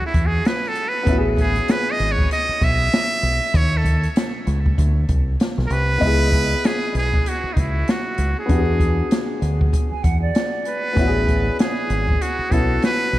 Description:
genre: hip hop, jazz-hop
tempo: 97 BPM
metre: 4/4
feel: swing 59% on 16ths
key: C# minor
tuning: A4 = 441 Hz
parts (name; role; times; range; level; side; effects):
- trumpet with metal mute; melody; 0.0-13.2 s; D#4 to E5; -23 LUFS; right 2 dB; tape echo
- dark upright piano; accompaniment; 0.0-13.2 s; B3 to G#5; -25 LUFS; left 2 dB; none
- deep dub fingered electric bass; bass; 0.0-13.2 s; G#1 to E2; -20 LUFS; equal; none
- open jazz drum kit; drums; 0.1-13.2 s; hi-hat, kick drum, snare drum; -21 LUFS; equal; none
- breathy silver concert flute; second line; 9.9-10.9 s; D5 to G#5; -30 LUFS; right 4 dB; none
room: moderate cathedral reverb, RT60 4.9 s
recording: dreamy mix soaked in reverb, vinyl crackle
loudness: -17 LUFS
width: side -15 dB against mid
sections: 0.0-6.0 A section; 6.0-13.2 B section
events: muted trumpet solo 0.0-6.0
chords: 0.0 E13; 1.1 Amaj9; 3.5 C#sus2; 4.8 Bm; 6.0 C#m7; 8.5 E9; 11.0 Amaj9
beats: 0.45 | 1.07 1.69 2.31 2.93 | 3.55 4.16 4.78 5.40 | 6.02 6.64 7.26 7.88 | 8.49 9.11 9.73 10.35 | 10.97 11.59 12.21 12.82

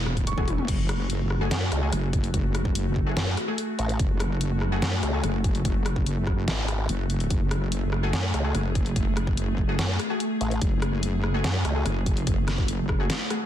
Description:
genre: heavy wobble dubstep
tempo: 145 BPM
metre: 4/4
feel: half-time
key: F# minor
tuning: A4 = 440 Hz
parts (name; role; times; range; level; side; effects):
- evolving wavetable pad; sustained chords; 0.0-13.5 s; F#3 to G#4; -33 LUFS; left 1 dB; chorus, built-in reverb, sidechain pumping
- wobble bass; bass; 0.0-13.1 s; E1 to F#1; -26 LUFS; equal; chorus, overdrive
- dubstep drum kit; drums; 0.1-13.4 s; crash cymbal, hi-hat, rim click, snare drum, toms; -31 LUFS; left 1 dB; none
- electronic kick drum; drums; 0.2-13.0 s; none; -26 LUFS; equal; none
- felt-muted upright piano; melody; 0.3-0.5 s; C#6; -39 LUFS; right 4 dB; dub echo
- orchestra-hit-like synth stab; stabs; 0.4-13.5 s; A3 to G#4; -34 LUFS; left 1 dB; built-in reverb, vintage 12-bit sampler grit, dub echo
- formant-sweep wobble bass; bass; 1.5-11.8 s; G#1 to F#2; -25 LUFS; equal; chorus, overdrive
room: digital ambience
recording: dense, heavily limited modern master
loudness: -23 LUFS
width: side -11 dB against mid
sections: 0.7-13.5 A section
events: drum fill 0.5; drop 0.7-13.5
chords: 0.0 F#madd9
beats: 0.27 | 0.68 1.10 1.51 1.93 | 2.34 2.75 3.17 3.58 | 4.00 4.41 4.82 5.24 | 5.65 6.06 6.48 6.89 | 7.30 7.72 8.13 8.55 | 8.96 9.37 9.79 10.20 | 10.62 11.03 11.44 11.86 | 12.27 12.68 13.10

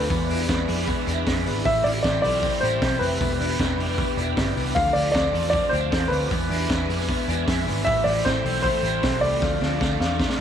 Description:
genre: jangly indie pop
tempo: 155 BPM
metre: 4/4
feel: straight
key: unclear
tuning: A4 = 441 Hz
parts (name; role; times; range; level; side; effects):
- warm upright piano; melody; 0.0-10.4 s; B4 to F5; -24 LUFS; equal; tape echo
- crunchy overdriven guitar; accompaniment; 0.0-10.4 s; E2 to F4; -30 LUFS; right 14 dB; phaser
- string machine, cellos; sustained chords; 0.0-10.4 s; G#4 to D6; -32 LUFS; equal; phaser, ensemble chorus
- twelve-string electric guitar; arpeggios; 0.0-10.4 s; E3 to A4; -30 LUFS; left 12 dB; tape echo
- vintage muted picked electric bass; bass; 0.0-10.4 s; E1 to F2; -27 LUFS; equal; none
- raw garage drum kit; drums; 0.1-10.4 s; hi-hat, kick drum, snare drum; -27 LUFS; equal; none
room: moderate spring reverb, RT60 2.5 s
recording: 1960s-style stereo with parts hard left and right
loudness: -20 LUFS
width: side -8 dB against mid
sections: 0.0-10.4 A section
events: drum fill 9.4-10.4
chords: 0.1 E7; 1.7 Am7; 3.2 Em7; 4.8 Dm7; 6.3 E7; 7.9 Am7; 9.4 Dm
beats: | 0.10 0.49 0.88 1.27 | 1.66 2.04 2.43 2.82 | 3.21 3.59 3.98 4.37 | 4.76 5.15 5.53 5.92 | 6.31 6.70 7.09 7.48 | 7.86 8.25 8.64 9.03 | 9.42 9.81 10.20

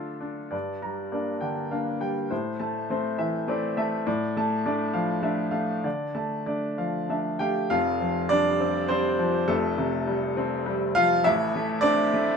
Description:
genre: neoclassical minimalist piano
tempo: 102 BPM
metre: 3/4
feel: rubato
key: F major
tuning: A4 = 440 Hz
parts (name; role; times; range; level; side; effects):
- clear upright piano; solo; 0.0-12.4 s; F1 to Bb5; -24 LUFS; equal; none
room: moderate studio reverb, RT60 0.8 s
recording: band playing live in one room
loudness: -24 LUFS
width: side -6 dB against mid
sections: 0.5-7.7 A section; 7.7-12.4 B section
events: none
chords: 0.0 Dm; 0.5 Gm; 2.3 Am; 4.1 F6/A; 5.8 Dm; 7.7 Fadd9; 11.3 Am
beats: | 0.53 1.13 1.72 | 2.30 2.89 3.47 | 4.05 4.64 5.24 | 5.84 6.46 7.09 | 7.71 8.31 8.91 | 9.50 10.09 10.68 | 11.26 11.84

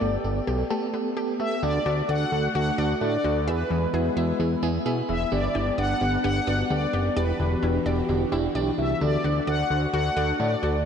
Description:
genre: pop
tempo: 130 BPM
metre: 4/4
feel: straight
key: D major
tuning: A4 = 443 Hz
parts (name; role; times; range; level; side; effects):
- mellow synth brass; melody; 0.0-10.8 s; B4 to F#5; -28 LUFS; left 2 dB; chorus, ping-pong delay
- FM electric piano with tremolo; accompaniment; 0.0-10.8 s; B3 to C5; -29 LUFS; right 4 dB; phaser
- chorused pulse-width pad; sustained chords; 0.0-10.8 s; E3 to G4; -30 LUFS; left 1 dB; none
- analog pluck; arpeggios; 0.0-10.8 s; D3 to E5; -34 LUFS; left 4 dB; chorus, ping-pong delay
- fat analog bass; bass; 0.0-10.9 s; E1 to B2; -27 LUFS; equal; none
room: wet lush hall reverb, RT60 2.6 s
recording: dreamy mix soaked in reverb, nothing above 10.4 kHz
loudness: -22 LUFS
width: side -7 dB against mid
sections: 0.0-1.6 A section; 1.6-10.9 B section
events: none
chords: 0.0 Gadd9; 1.6 D; 3.5 E; 5.3 G; 7.2 Em7; 9.0 D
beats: 0.24 0.70 1.17 | 1.63 2.09 2.55 3.01 | 3.48 3.94 4.40 4.86 | 5.32 5.78 6.24 6.71 | 7.17 7.63 8.09 8.55 | 9.01 9.47 9.94 10.40

